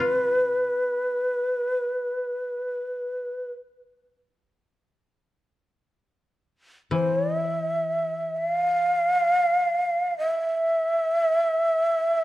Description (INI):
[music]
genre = japanese traditional, Japanese chamber music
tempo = free time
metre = none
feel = none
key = unclear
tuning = A4 = 440 Hz
[part]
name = breathy mellow shakuhachi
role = melody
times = 0.0-12.2 s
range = B4 to F5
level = -22 LUFS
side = equal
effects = none
[part]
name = koto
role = accompaniment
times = 0.0-2.7, 6.9-10.3 s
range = B2 to F4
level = -31 LUFS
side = left 4 dB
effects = none
[sound]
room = moderate recital hall reverb, RT60 1.3 s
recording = dark, warm production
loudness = -22 LUFS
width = side -16 dB against mid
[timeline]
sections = 0.0-12.2 A section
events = none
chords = none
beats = free time